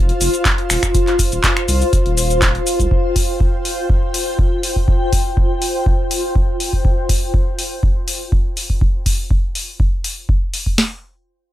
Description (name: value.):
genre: acid house.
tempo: 122 BPM.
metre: 4/4.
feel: straight.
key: unclear.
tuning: A4 = 441 Hz.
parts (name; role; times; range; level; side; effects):
saturated sub bass; bass; 0.0-2.9 s; Eb1 to C2; -19 LUFS; equal; tube saturation, sidechain pumping.
granular cloud pad; texture; 0.0-6.8 s; F4 to G5; -21 LUFS; left 1 dB; built-in reverb, sidechain pumping.
punchy analog drum machine; drums; 0.1-10.6 s; finger snaps, handclaps, hi-hat, shaker; -21 LUFS; left 1 dB; none.
booming analog drum machine; drums; 0.5-10.9 s; hi-hat, kick drum, snare drum; -16 LUFS; equal; none.
room: light reverb.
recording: none.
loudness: -15 LUFS.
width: side -14 dB against mid.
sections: 0.0-10.8 A section.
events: none.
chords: 0.0 F5; 10.8 N.C..